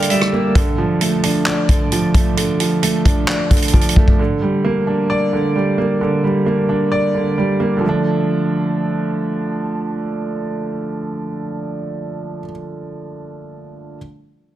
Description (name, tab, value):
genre	hip hop, trap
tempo	132 BPM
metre	4/4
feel	half-time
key	D minor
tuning	A4 = 440 Hz
part	Celtic harp	melody	0.0-1.8 s	D5 to G5	-25 LUFS	left 1 dB	tape echo
part	warm concert grand piano	accompaniment	0.0-14.0 s	D3 to D5	-17 LUFS	right 1 dB	none
part	vintage drum kit	drums	0.0-4.2 s	handclaps, hi-hat, kick drum, rim click	-16 LUFS	equal	none
room	light reverb, small room ambience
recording	dense, heavily limited modern master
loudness	-15 LUFS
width	side -13 dB against mid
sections	0.6-7.8 A section; 7.8-11.5 B section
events	break 0.0-0.6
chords	0.0 Gm; 0.6 Dm; 4.2 Gm; 7.8 Dm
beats	0.10 | 0.55 1.01 1.46 1.92 | 2.37 2.83 3.28 3.74 | 4.19 4.64 5.10 5.55 | 6.01 6.46 6.92 7.37 | 7.83 8.28 8.74 9.19 | 9.64 10.10 10.55 11.01